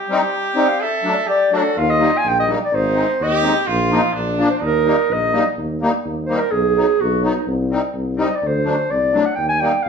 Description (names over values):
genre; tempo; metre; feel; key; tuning
alpine folk, alpine dance band; 126 BPM; 2/4; straight; Eb major; A4 = 440 Hz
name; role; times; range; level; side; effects
bright trumpet; second line; 0.0-5.3 s; D4 to A4; -22 LUFS; right 2 dB; none
musette accordion; accompaniment; 0.1-9.7 s; F3 to Eb4; -21 LUFS; left 2 dB; none
warm clarinet; melody; 0.6-9.9 s; D#4 to Ab5; -18 LUFS; right 1 dB; none
warm tuba; bass; 1.8-9.9 s; Ab1 to Eb2; -22 LUFS; right 1 dB; none
room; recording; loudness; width
wet large studio reverb, RT60 0.8 s; band playing live in one room; -15 LUFS; side -6 dB against mid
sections
0.0-5.6 A section; 5.6-9.9 A section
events
none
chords
0.0 Cm; 0.8 D; 1.8 Eb; 2.7 Ab; 3.7 Bbsus4; 4.1 Bb; 4.6 Eb; 6.5 B; 7.5 Cm; 8.4 D7; 9.4 Eb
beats
0.34 | 0.81 1.29 | 1.76 2.24 | 2.72 3.19 | 3.66 4.13 | 4.61 5.08 | 5.56 6.04 | 6.51 6.99 | 7.46 7.94 | 8.41 8.89 | 9.37 9.85